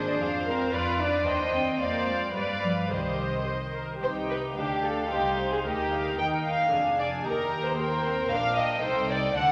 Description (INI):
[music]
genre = quick classical-period movement for string orchestra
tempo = 112 BPM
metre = 2/4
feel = straight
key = C minor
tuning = A4 = 441 Hz
[part]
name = dark studio violin section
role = melody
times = 0.0-9.5 s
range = Eb5 to Bb5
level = -38 LUFS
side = equal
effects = none
[part]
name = warm studio violin section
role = second line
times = 0.0-9.5 s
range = G4 to G5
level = -30 LUFS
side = equal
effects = none
[part]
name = warm studio viola section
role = accompaniment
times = 0.0-9.5 s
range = Bb3 to C5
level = -34 LUFS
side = equal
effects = none
[part]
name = rich studio double bass section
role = bass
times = 0.0-9.5 s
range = F1 to G2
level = -38 LUFS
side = equal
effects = none
[part]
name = warm studio cello section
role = bass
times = 0.0-9.5 s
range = C2 to F4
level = -36 LUFS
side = equal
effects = none
[sound]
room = wet scoring stage reverb, RT60 1.9 s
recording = none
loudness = -27 LUFS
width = mono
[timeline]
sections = 0.0-4.0 A section; 4.0-9.5 A section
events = none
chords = 0.2 Dm/F; 0.7 Bdim/F; 1.3 Cm/Eb; 1.8 Dm7b5/F; 2.3 G7; 2.9 Cm; 4.6 Dmadd11; 5.1 Cm; 6.2 Eb; 6.7 Ddim/F; 7.3 Eb; 8.3 Gm/Bb; 8.8 Adim/C